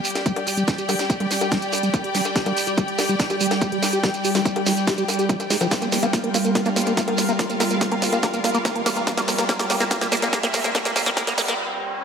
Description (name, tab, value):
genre	psychedelic trance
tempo	143 BPM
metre	4/4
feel	straight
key	unclear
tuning	A4 = 440 Hz
part	resonant blip pluck	second line	0.0-1.1, 6.7-8.0 s	G3 to F4	-36 LUFS	left 5 dB	none
part	evolving wavetable pad	sustained chords	0.0-12.0 s	G3	-27 LUFS	right 1 dB	chorus, built-in reverb, sidechain pumping
part	techno drum kit	drums	0.0-11.6 s	bongos, hi-hat, snare drum	-25 LUFS	equal	overdrive, high-pass filter on perc, high-pass filter on snare, high-pass filter on hats
part	shekere	percussion	0.0-11.6 s	none	-30 LUFS	right 5 dB	none
part	clear symphonic string section	texture	0.0-11.6 s	F4 to G5	-28 LUFS	left 2 dB	sidechain pumping
part	liquid acid bass	riff	0.2-11.5 s	F3 to G4	-24 LUFS	equal	chorus, auto-pan, sidechain pumping, dub echo
part	electronic kick drum	drums	0.3-11.3 s	none	-24 LUFS	equal	high-pass filter on kick, high-pass filter on room
part	riser	sound effects	7.7-12.0 s	none	-35 LUFS	right 1 dB	none
room	moderate lush hall reverb, RT60 2.0 s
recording	high-pass filter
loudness	-19 LUFS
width	side -6 dB against mid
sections	0.0-12.0 A section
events	build-up 0.0-12.0; drum fill 0.0-11.6; filter sweep on acid bass 0.0-12.0; filter sweep on ambient pad 0.0-12.0; riser 7.7-12.0; break 11.6-12.0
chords	0.0 G5; 5.7 Bb5